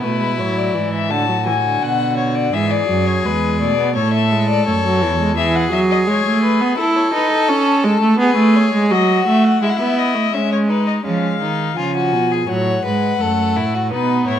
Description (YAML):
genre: classical, baroque-style fugue for string quartet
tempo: 84 BPM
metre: 4/4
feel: straight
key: A major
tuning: A4 = 441 Hz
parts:
  - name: dark violin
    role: melody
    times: 0.0-14.4 s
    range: A4 to A5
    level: -21 LUFS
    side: left 10 dB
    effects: none
  - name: rich violin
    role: second line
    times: 0.0-14.4 s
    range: C#4 to C#5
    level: -22 LUFS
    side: left 3 dB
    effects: none
  - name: warm viola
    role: accompaniment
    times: 0.0-14.4 s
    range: D3 to E4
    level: -17 LUFS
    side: right 2 dB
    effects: none
  - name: warm cello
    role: bass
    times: 0.0-5.4, 11.1-14.4 s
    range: E2 to E#3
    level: -22 LUFS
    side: right 4 dB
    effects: none
room: moderate recital hall reverb, RT60 1.5 s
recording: close, detailed microphones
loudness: -14 LUFS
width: side -9 dB against mid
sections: 0.0-11.1 A section; 11.1-14.4 B section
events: none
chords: 0.0 A5; 1.1 Bm7/A; 2.5 E7; 4.0 A; 5.4 E; 6.8 Amaj7#11; 8.2 B7; 9.6 E; 11.1 C#7; 12.5 F#m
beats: 0.40 1.11 1.82 | 2.54 3.25 3.96 4.67 | 5.37 6.08 6.79 7.49 | 8.20 8.91 9.63 10.34 | 11.05 11.78 12.49 13.21 | 13.92